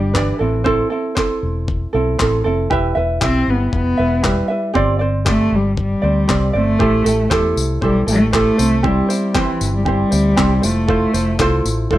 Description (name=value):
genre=acoustic pop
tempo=117 BPM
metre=4/4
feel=straight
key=A minor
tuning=A4 = 442 Hz
part: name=dark cello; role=melody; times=0.0-12.0 s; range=E3 to C4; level=-18 LUFS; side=equal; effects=none
part: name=ukulele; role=accompaniment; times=0.0-12.0 s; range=C4 to E5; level=-19 LUFS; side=right 3 dB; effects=none
part: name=vintage muted fingered electric bass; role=bass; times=0.0-12.0 s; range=E1 to E2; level=-20 LUFS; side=left 1 dB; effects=none
part: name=dusty soul sampler-style drum kit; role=drums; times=0.1-12.0 s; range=handclaps, kick drum, tambourine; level=-22 LUFS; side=left 2 dB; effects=overdrive
room=moderate studio reverb, RT60 0.8 s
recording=none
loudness=-14 LUFS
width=side -14 dB against mid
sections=0.0-6.8 A section; 6.8-12.0 B section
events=none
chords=0.4 Am; 2.7 Em; 4.8 Gsus4; 6.8 Am7; 8.6 C; 10.6 Fmaj7